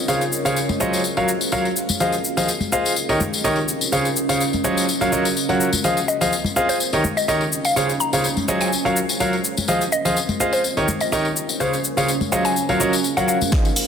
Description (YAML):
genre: piano house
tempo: 125 BPM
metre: 4/4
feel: swing 53% on 16ths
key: unclear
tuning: A4 = 441 Hz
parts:
  - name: deep dark ambient pad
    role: texture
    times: 0.0-13.9 s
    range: C4 to F5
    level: -27 LUFS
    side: right 3 dB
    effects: chorus, built-in reverb, sidechain pumping
  - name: clear concert grand piano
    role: riff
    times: 0.1-13.6 s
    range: Db3 to Gb5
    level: -20 LUFS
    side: equal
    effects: sidechain pumping, low-pass filter, tape echo
  - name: punchy analog drum machine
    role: drums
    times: 0.1-13.9 s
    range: hi-hat, shaker, snare drum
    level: -27 LUFS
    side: left 3 dB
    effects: none
  - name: tambourine and congas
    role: percussion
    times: 0.1-13.7 s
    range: none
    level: -25 LUFS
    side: left 5 dB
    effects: none
  - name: mallet-like synth pluck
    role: melody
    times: 6.1-13.4 s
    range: C5 to Bb5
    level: -25 LUFS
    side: left 2 dB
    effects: chorus, phaser, tape echo
  - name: electronic kick drum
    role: drums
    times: 13.5-13.6 s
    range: none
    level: -18 LUFS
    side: equal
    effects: none
room: moderate plate reverb, RT60 2.1 s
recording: dense, heavily limited modern master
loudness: -18 LUFS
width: side -7 dB against mid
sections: 0.0-13.5 A section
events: drum fill 13.5-13.9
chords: 0.1 Dbmaj7; 1.0 Gbmaj7; 2.0 Fm7; 3.0 Eb7; 3.9 Dbmaj7; 4.9 Gbmaj7; 5.8 Fm7; 6.8 Eb7; 7.8 Dbmaj7; 8.7 Gbmaj7; 9.7 Fm7; 10.6 Eb7; 11.6 Dbmaj7; 12.6 Gbmaj7